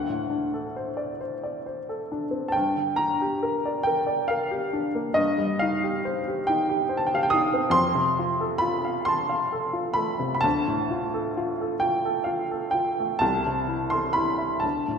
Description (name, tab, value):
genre	classical, romantic nocturne for solo piano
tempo	39-47 BPM (dotted quarters)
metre	6/8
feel	rubato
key	A minor from 7.8 s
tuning	A4 = 440 Hz
part	warm upright piano	solo	0.0-15.0 s	C2 to Eb6	-23 LUFS	equal	none
room	wet scoring stage reverb, RT60 1.7 s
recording	none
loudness	-23 LUFS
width	side -6 dB against mid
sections	0.0-15.0 A section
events	none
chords	0.0 D7; 2.5 Gm; 5.2 Cm/G; 7.8 F; 10.4 Dm; 13.2 Am/C